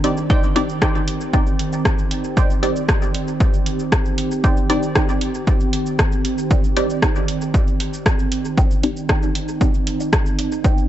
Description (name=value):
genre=dub techno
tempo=116 BPM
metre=4/4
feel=straight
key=C minor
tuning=A4 = 436 Hz
part: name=warbly tape-like pad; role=sustained chords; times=0.0-10.9 s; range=Eb3 to G4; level=-24 LUFS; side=right 2 dB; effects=chorus, built-in reverb, sidechain pumping
part: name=filtered dub chord stab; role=stabs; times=0.0-9.8 s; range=C4 to D5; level=-24 LUFS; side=equal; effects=phaser, sidechain pumping, dub echo
part: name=punchy analog drum machine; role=drums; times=0.0-10.9 s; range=hi-hat, rim click, shaker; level=-24 LUFS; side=equal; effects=overdrive, dub echo
part: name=filtered dub chord stab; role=riff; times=0.3-10.8 s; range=Eb4 to G5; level=-30 LUFS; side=right 4 dB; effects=phaser, lush chorus, cassette tape, sidechain pumping, dub echo
part: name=electronic kick drum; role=drums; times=0.3-10.8 s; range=none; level=-18 LUFS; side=equal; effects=overdrive
room=little or no reverb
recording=nothing above 7.9 kHz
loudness=-16 LUFS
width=side -12 dB against mid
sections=0.0-10.9 A section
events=none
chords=0.0 Cmadd9